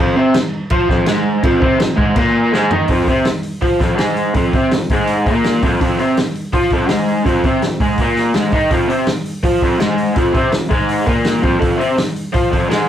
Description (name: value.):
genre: garage rock duo or trio.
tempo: 165 BPM.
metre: 4/4.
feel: straight.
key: F minor.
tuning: A4 = 440 Hz.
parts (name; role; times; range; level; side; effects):
raw garage guitar; riff; 0.0-12.9 s; F2 to F4; -14 LUFS; equal; overdrive.
vintage drum kit; drums; 0.3-12.8 s; crash cymbal, hi-hat, kick drum, snare drum, toms; -18 LUFS; equal; none.
room: moderate small room ambience, RT60 0.5 s.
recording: rough rehearsal-room recording, warm saturation.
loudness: -13 LUFS.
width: side -10 dB against mid.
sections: 0.0-2.9 A section; 2.9-12.9 B section.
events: drum fill 2.5-2.9.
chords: 0.0 Fm.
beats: 0.34 0.71 1.07 | 1.44 1.80 2.17 2.53 | 2.89 3.26 3.62 3.98 | 4.35 4.71 5.08 5.44 | 5.80 6.17 6.53 6.90 | 7.26 7.62 7.99 8.35 | 8.71 9.07 9.44 9.80 | 10.16 10.53 10.89 11.26 | 11.62 11.98 12.35 12.71.